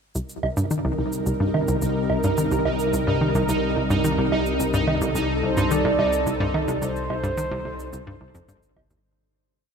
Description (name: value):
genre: ambient, sequencer-driven space music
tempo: 108 BPM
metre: 4/4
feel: straight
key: C dorian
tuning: A4 = 440 Hz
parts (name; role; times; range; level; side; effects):
- lush unison pad; sustained chords; 0.5-9.0 s; C3 to Bb4; -25 LUFS; equal; chorus
- hollow square pluck; riff; 0.2-8.9 s; C2 to Eb3; -25 LUFS; equal; chorus, tape echo
- warm sub bass; bass; 0.2-9.0 s; C2; -34 LUFS; left 1 dB; none
- shaker and woodblock; percussion; 0.2-9.0 s; none; -32 LUFS; right 4 dB; overdrive, tape echo
- pulsing gated texture; texture; 1.0-9.1 s; Eb4; -31 LUFS; right 4 dB; chorus, built-in reverb
- mellow horn-like synth lead; melody; 5.4-8.4 s; C5 to D5; -27 LUFS; right 2 dB; chorus, tape echo
room: moderate huge ambient reverb, RT60 9.1 s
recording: faint mains hum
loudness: -20 LUFS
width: side -6 dB against mid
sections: 0.2-9.0 A section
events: fade-in on sub bass 0.2-9.0; fade-out 6.1-9.0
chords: 0.2 Cm7